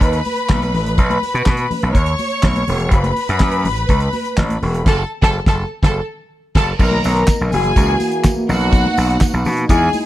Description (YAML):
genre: disco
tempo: 124 BPM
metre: 4/4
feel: straight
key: B major from 6.8 s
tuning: A4 = 439 Hz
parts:
  - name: clear studio string section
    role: second line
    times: 0.0-10.0 s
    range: F#4 to C#6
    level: -20 LUFS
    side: left 1 dB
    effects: none
  - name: gritty slap bass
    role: bass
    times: 0.0-9.9 s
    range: E1 to B2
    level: -18 LUFS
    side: equal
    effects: overdrive
  - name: damped 70s drum kit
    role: drums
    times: 0.0-10.0 s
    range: crash cymbal, handclaps, hi-hat, kick drum, snare drum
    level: -16 LUFS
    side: equal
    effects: none
  - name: congas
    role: percussion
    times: 0.0-10.0 s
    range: none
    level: -26 LUFS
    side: left 2 dB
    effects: none
  - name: mellow French horn section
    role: sustained chords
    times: 6.8-10.1 s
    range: B2 to A#4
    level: -21 LUFS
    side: right 1 dB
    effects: none
  - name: tambourine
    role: percussion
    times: 6.8-10.0 s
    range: none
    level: -36 LUFS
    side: right 2 dB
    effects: none
room: studio reverb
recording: dark, warm production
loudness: -14 LUFS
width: side -14 dB against mid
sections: 0.0-6.8 A section; 6.8-10.1 B section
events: band accent 4.9-6.8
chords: 0.0 Badd9; 2.9 F#m; 6.8 Bmaj7; 7.5 F#7; 8.5 Bmaj7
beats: 0.01 0.49 | 0.98 1.46 1.95 2.43 | 2.92 3.40 3.89 4.37 | 4.86 5.34 5.83 6.31 | 6.79 7.28 7.76 8.24 | 8.73 9.21 9.69